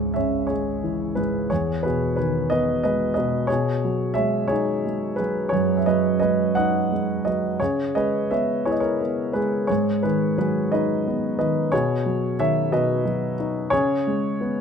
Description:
classical, lyrical solo piano; 59 BPM (dotted quarters); 6/8; rubato; C# minor; A4 = 440 Hz
dark concert grand piano; solo; 0.0-14.6 s; C#2 to F#5; -20 LUFS; equal
light reverb; close, detailed microphones; -20 LUFS; side -6 dB against mid
0.0-14.6 A section
0.0 C#m; 1.5 Emaj7; 3.5 B69; 7.6 C#m7; 9.7 G#m7; 11.7 B69; 13.7 C#7(no3)

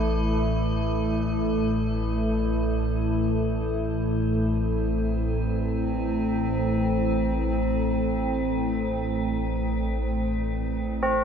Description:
dark ambient drone; free time; A minor; A4 = 440 Hz
deep dark ambient pad; sustained chords; 0.0-11.2 s; A3 to A4; -27 LUFS; left 1 dB; chorus, built-in reverb
tubular bells; arpeggios; 0.0-11.2 s; C4 to A4; -21 LUFS; right 1 dB
deep rumbling drone; drone; 0.0-11.2 s; A1 to A2; -28 LUFS; equal; built-in reverb, phaser
metallic inharmonic drone; texture; 0.0-11.2 s; E3 to E4; -30 LUFS; equal; chorus, built-in reverb
wet huge ambient reverb, RT60 8.3 s; -23 LUFS; side -7 dB against mid
0.0-11.2 A section
0.0 A5

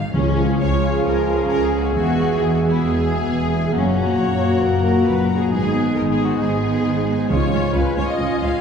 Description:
cinematic; 134 BPM; 4/4; straight; A4 = 440 Hz
clear symphonic violin section; second line; 0.0-8.6 s; C#4 to E#5; -26 LUFS; left 1 dB
mellow clarinet; second line; 0.1-8.6 s; A#3 to C#4; -29 LUFS; left 2 dB
silver concert flute; second line; 0.1-8.6 s; G#5 to A#5; -35 LUFS; left 5 dB
warm cor anglais; second line; 0.1-8.6 s; D#5 to F#5; -31 LUFS; left 2 dB
bright trombone section; sustained chords; 0.1-8.6 s; G#2 to G#3; -26 LUFS; right 2 dB
mellow French horn section; sustained chords; 0.1-8.6 s; G#3 to G#4; -25 LUFS; left 1 dB
rich symphonic cello section; bass; 0.1-8.5 s; C#2 to G#2; -23 LUFS; equal
timpani; percussion; 0.1-0.8, 7.3-7.9 s; C#3; -24 LUFS; left 2 dB
dark studio double bass section; bass; 0.2-8.5 s; E1 to C#2; -25 LUFS; right 1 dB
rich symphonic violin section; melody; 0.4-8.6 s; E#5 to A#5; -38 LUFS; left 4 dB
rich symphonic viola section; accompaniment; 0.4-8.6 s; A#3 to G#4; -25 LUFS; right 1 dB
wet scoring stage reverb, RT60 1.9 s; heard from further back in the room; -16 LUFS; side -6 dB against mid
0.1-8.6 A section
0.1 C#; 1.9 E; 3.7 F#; 5.5 G#m; 7.3 C#

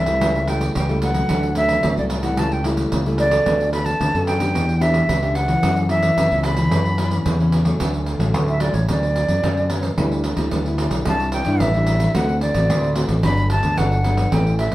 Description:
samba and choro; 111 BPM; 4/4; straight; D major from 7.8 s; A4 = 440 Hz
jazz flute; melody; 0.0-14.7 s; C#5 to B5; -22 LUFS; equal
nylon-string guitar; accompaniment; 0.0-14.7 s; F#2 to A4; -24 LUFS; left 1 dB
growling fingered electric bass; bass; 0.0-14.7 s; G1 to G2; -20 LUFS; equal; overdrive
pandeiro; percussion; 0.1-14.7 s; -24 LUFS; right 2 dB
wet studio reverb, RT60 0.8 s; heard from further back in the room; -17 LUFS; side -16 dB against mid
0.0-7.8 A section; 7.8-14.7 B section
flute solo 7.8-14.7
0.2 A7/C#; 1.3 Dmaj7; 2.4 A7/C#; 3.5 Bm7/D; 4.5 Em7; 5.6 F#7sus4; 7.8 Dmaj7; 8.9 Bmadd9/D; 10.0 G6/D; 11.1 Cadd9; 12.2 D7; 13.2 Gmaj7

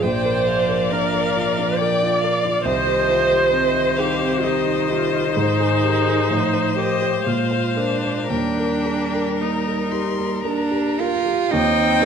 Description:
classical, slow romantic movement for piano quintet; 53-71 BPM; 3/4; rubato; Eb major; A4 = 440 Hz
rich violin; melody; 0.0-12.1 s; Bb4 to G5; -24 LUFS; left 10 dB
clear violin; second line; 0.0-12.1 s; Bb4 to C6; -31 LUFS; left 4 dB
rich cello; second line; 0.0-12.1 s; Eb3 to F4; -25 LUFS; right 7 dB
dark grand piano; accompaniment; 0.0-12.1 s; Bb1 to C5; -23 LUFS; equal
rich viola; accompaniment; 0.0-12.1 s; C4 to D5; -22 LUFS; right 3 dB
moderate recital hall reverb, RT60 1.6 s; close, detailed microphones; -17 LUFS; side -7 dB against mid
0.0-11.5 A section
0.0 Bb; 2.6 Cm; 5.4 Ab; 6.3 F7/A; 7.3 Bb9; 8.3 Eb

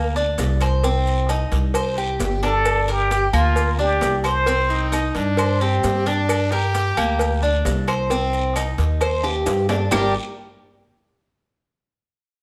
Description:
latin, Cuban son and guajira; 132 BPM; 4/4; straight; A4 = 440 Hz
Cuban tres; arpeggios; 0.0-10.1 s; G3 to C5; -26 LUFS; equal
upright bass; bass; 0.0-10.1 s; G1 to G2; -24 LUFS; equal
maracas; percussion; 0.2-10.0 s; -40 LUFS; equal
cowbell and bongos; percussion; 0.4-10.0 s; -31 LUFS; equal
guiro; percussion; 0.4-10.0 s; -41 LUFS; equal
timbales and agogo bells; percussion; 0.4-10.0 s; -32 LUFS; equal
trumpet with plunger mute; melody; 2.5-4.9 s; F4 to C5; -23 LUFS; equal
claves; percussion; 2.7-10.0 s; -34 LUFS; equal
bright trumpet; second line; 4.7-10.1 s; C4 to Bb4; -27 LUFS; equal
light reverb; -20 LUFS; mono
0.0-9.9 A section; 9.9-11.7 B section
drum fill 9.2-9.9
0.0 Gm (rootless); 0.8 Cm; 2.7 Gm; 4.5 Cm; 6.3 Gm; 8.1 Cm; 9.9 N.C.

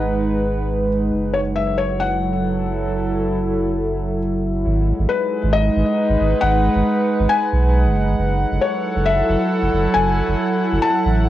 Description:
IDM; 136 BPM; 4/4; straight; G# phrygian; A4 = 442 Hz
felt-muted upright piano; melody; 0.0-11.3 s; B4 to A5; -22 LUFS; left 4 dB; cassette tape, tape echo
warbly tape-like pad; sustained chords; 0.0-11.3 s; F#3 to F#5; -20 LUFS; right 1 dB; chorus, built-in reverb
warm sub bass; bass; 0.0-11.3 s; F#1 to B1; -20 LUFS; right 1 dB
moderate studio reverb, RT60 0.6 s; home recording on cassette; -16 LUFS; side -13 dB against mid
0.0-4.7 A section; 4.7-11.3 B section
0.0 G#m7; 1.1 F#m7; 4.7 G#m7; 8.2 F#m7

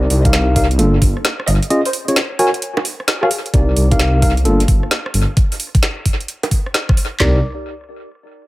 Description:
UK garage, two-step garage; 131 BPM; 4/4; swing 65% on 16ths; C minor; A4 = 436 Hz
dark studio violin section; melody; 0.0-3.4 s; G#4 to Eb5; -27 LUFS; equal; tape echo
mellow tine electric piano; stabs; 0.0-7.4 s; Bb3 to G#5; -18 LUFS; equal; tape echo
dark detuned saw bass; bass; 0.0-7.4 s; G1 to C2; -15 LUFS; equal; sidechain pumping
garage drum kit; drums; 0.1-7.1 s; bongos, hi-hat, rim click, snare drum; -20 LUFS; right 1 dB; overdrive, small room ambience, analog delay
garage drum kit; drums; 0.3-7.3 s; handclaps, kick drum, snare drum, toms; -15 LUFS; equal; overdrive, small room ambience
light reverb, digital ambience; echo-heavy mix; -13 LUFS; side -19 dB against mid
0.0-3.5 A section; 3.5-7.2 B section; 7.2-8.5 C section
drop 0.0-3.5; break 1.7-3.5
0.0 Cm7; 0.8 Gm7; 1.7 Dbmaj9; 2.4 F#maj9; 3.5 Cm7; 4.5 Gm7; 5.4 N.C.; 7.2 Cm7

